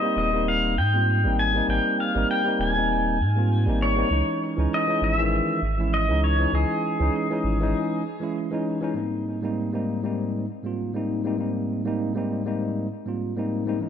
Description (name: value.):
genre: sunset chillout.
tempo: 99 BPM.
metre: 4/4.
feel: swing 56% on 16ths.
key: Ab major.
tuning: A4 = 444 Hz.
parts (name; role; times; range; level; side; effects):
pedal steel guitar; melody; 0.0-8.3 s; Ab4 to Ab5; -25 LUFS; left 1 dB; ping-pong delay.
tine electric piano; accompaniment; 0.0-13.9 s; Ab2 to F4; -25 LUFS; moving between left 4 dB and right 4 dB; auto-pan.
warm sub bass; bass; 0.2-7.7 s; Eb1 to Ab2; -24 LUFS; equal; none.
room: light reverb, digital ambience.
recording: none.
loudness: -22 LUFS.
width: side -8 dB against mid.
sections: 0.0-9.0 A section; 9.0-13.9 B section.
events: break 7.7-9.0.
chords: 0.0 Abmaj9; 4.1 Dbmadd9; 9.0 Abmaj9.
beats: 0.47 1.08 | 1.69 2.29 2.90 3.50 | 4.11 4.72 5.32 5.93 | 6.53 7.14 7.75 8.35 | 8.96 9.56 10.17 10.78 | 11.38 11.99 12.60 13.20 | 13.81.